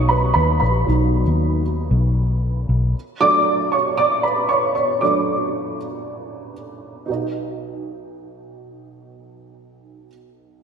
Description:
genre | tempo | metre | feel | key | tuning
pop | 116 BPM | 4/4 | straight | B major | A4 = 439 Hz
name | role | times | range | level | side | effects
dark upright piano | accompaniment | 0.0-10.6 s | B1 to D#6 | -19 LUFS | right 2 dB | ensemble chorus
vintage muted fingered electric bass | bass | 0.0-2.9 s | A#1 to D#2 | -18 LUFS | left 1 dB | none
room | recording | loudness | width
wet lush hall reverb, RT60 2.2 s | bright 1980s-style digital production | -17 LUFS | side -7 dB against mid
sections
0.0-7.1 A section; 7.1-10.6 B section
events
upright piano solo 0.0-7.1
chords
0.0 B; 2.9 D; 7.1 B

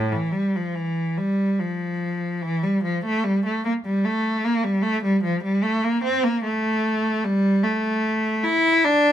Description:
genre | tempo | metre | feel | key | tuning
classical, baroque-style suite movement for unaccompanied cello | 75 BPM | 3/4 | rubato | unclear | A4 = 439 Hz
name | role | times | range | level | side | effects
rich cello | solo | 0.0-9.1 s | A2 to E4 | -20 LUFS | equal | none
room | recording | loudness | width
light reverb | none | -20 LUFS | side -11 dB against mid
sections
0.0-9.1 A section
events
none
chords
none

